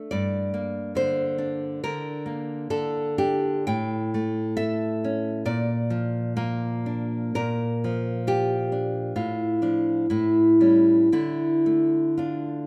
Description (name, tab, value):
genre	romantic piece for solo classical guitar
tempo	65 BPM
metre	4/4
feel	uneven beats, rubato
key	D minor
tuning	A4 = 441 Hz
part	nylon-string guitar	solo	0.0-12.7 s	G2 to G5	-24 LUFS	equal	none
room	moderate recital hall reverb, RT60 1.6 s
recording	none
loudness	-24 LUFS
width	mono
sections	0.0-12.7 A section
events	none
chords	0.1 Gm; 3.7 A7; 5.5 Bb; 9.1 Dm/A; 10.1 A7; 11.1 Dm